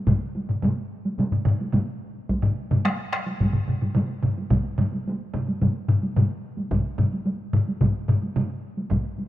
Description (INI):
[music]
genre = japanese traditional, taiko drum ensemble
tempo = 109 BPM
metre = 4/4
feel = straight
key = none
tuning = none
[part]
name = solo taiko drums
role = percussion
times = 0.1-9.0 s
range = none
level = -30 LUFS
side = equal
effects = none
[part]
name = taiko ensemble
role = percussion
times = 0.1-9.3 s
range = none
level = -28 LUFS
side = right 1 dB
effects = none
[part]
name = taiko ensemble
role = percussion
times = 0.1-9.0 s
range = none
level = -24 LUFS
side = left 3 dB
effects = none
[part]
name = taiko ensemble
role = percussion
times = 0.1-9.0 s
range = none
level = -27 LUFS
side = right 3 dB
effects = none
[sound]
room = light reverb, small room ambience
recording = rough home demo mix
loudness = -22 LUFS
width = side -14 dB against mid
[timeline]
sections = 0.0-9.3 A section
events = none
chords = none